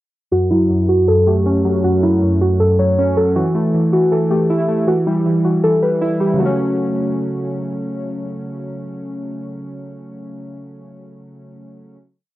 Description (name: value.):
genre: hip hop, trap.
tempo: 158 BPM.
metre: 4/4.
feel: half-time.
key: F# phrygian.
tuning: A4 = 440 Hz.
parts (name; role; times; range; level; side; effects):
muted felt-like synth keys; melody; 0.3-7.5 s; E4 to C#5; -17 LUFS; equal; chorus, low-pass filter, cassette tape, analog delay.
warbly lo-fi synth keys; accompaniment; 0.3-12.0 s; F#2 to E4; -18 LUFS; equal; chorus, low-pass filter, cassette tape.
room: wet booth ambience, RT60 0.3 s.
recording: home recording on cassette.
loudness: -14 LUFS.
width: side -15 dB against mid.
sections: 0.3-6.4 breakdown; 6.4-9.4 final chord.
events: filter sweep 0.3-6.4.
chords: 0.3 F#m; 3.4 Emadd11; 4.9 Em; 6.4 F#m.